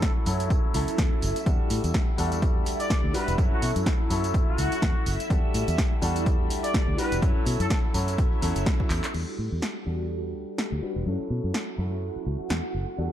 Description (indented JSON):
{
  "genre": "filtered disco house",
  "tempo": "125 BPM",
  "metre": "4/4",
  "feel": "swing 57% on 16ths",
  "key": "unclear",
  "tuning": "A4 = 440 Hz",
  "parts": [
    { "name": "clear trumpet section", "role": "melody", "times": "0.0-7.8 s", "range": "F#4 to D5", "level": "-33 LUFS", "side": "equal", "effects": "sidechain pumping, low-pass filter, digital delay" },
    { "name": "bright grand piano", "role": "accompaniment", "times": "0.0-13.1 s", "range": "F#3 to B4", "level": "-32 LUFS", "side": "left 1 dB", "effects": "phaser, vintage 12-bit sampler grit, sidechain pumping, low-pass filter" },
    { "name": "phased string machine", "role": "sustained chords", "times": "0.0-13.1 s", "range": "E4 to F#5", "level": "-35 LUFS", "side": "equal", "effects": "ensemble chorus, phaser, sidechain pumping, low-pass filter" },
    { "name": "electronic kick drum", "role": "drums", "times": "0.0-8.9 s", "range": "none", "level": "-25 LUFS", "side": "equal", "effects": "none" },
    { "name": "punchy analog drum machine", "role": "drums", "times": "0.0-12.6 s", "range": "crash cymbal, handclaps, hi-hat, snare drum, tambourine", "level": "-33 LUFS", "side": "equal", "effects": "sidechain pumping on hats, sidechain pumping on cymbals, sidechain pumping on perc" },
    { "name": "maracas", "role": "percussion", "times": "0.0-9.1 s", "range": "none", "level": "barely audible", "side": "none", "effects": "none" },
    { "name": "fingered electric bass", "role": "bass", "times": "0.3-13.1 s", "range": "E1 to B2", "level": "-28 LUFS", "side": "equal", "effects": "sidechain pumping, low-pass filter" }
  ],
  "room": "light reverb",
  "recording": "dark, warm production",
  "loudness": "-23 LUFS",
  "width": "side -11 dB against mid",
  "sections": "0.0-9.1 A section; 9.1-13.1 B section",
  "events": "filter sweep 0.0-9.1, 9.1-13.1; drum fill 8.9",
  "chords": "0.0 F#m7; 1.5 Em11; 3.4 F#m7; 5.3 Em11; 7.2 F#m7; 9.1 Em11; 11.1 F#m7",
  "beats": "0.02 0.50 0.98 | 1.46 1.94 2.42 2.90 | 3.38 3.86 4.34 4.82 | 5.30 5.78 6.26 6.74 | 7.22 7.70 8.18 8.66 | 9.14 9.62 10.10 10.58 | 11.06 11.54 12.02 12.50 | 12.98"
}